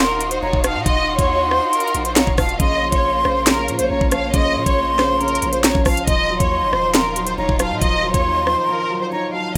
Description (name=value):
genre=hip hop, drill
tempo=138 BPM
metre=4/4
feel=half-time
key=unclear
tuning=A4 = 440 Hz
part: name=rich studio violin section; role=melody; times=0.0-9.5 s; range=Bb4 to F5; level=-24 LUFS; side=equal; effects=tape echo
part: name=breathy hollow silver concert flute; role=second line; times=0.0-9.5 s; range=A5 to C6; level=-24 LUFS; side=equal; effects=tape echo
part: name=warm symphonic string section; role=sustained chords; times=0.0-9.6 s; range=Eb3 to Db5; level=-29 LUFS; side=equal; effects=none
part: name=long sustained 808-style bass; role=bass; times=0.0-9.6 s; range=Eb1 to Bb2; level=-30 LUFS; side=equal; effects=none
part: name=drill drum kit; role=drums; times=0.2-9.6 s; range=hi-hat, kick drum, rim click, snare drum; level=-21 LUFS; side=equal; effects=none
part: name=dark concert grand piano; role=accompaniment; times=2.6-9.6 s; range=Db3 to Eb4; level=-29 LUFS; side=equal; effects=none
room=studio reverb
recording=rough home demo mix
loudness=-18 LUFS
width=mono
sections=0.0-9.6 A section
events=break 8.7-9.6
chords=0.0 Ebmadd9; 2.6 Bbm; 6.1 Ebmadd9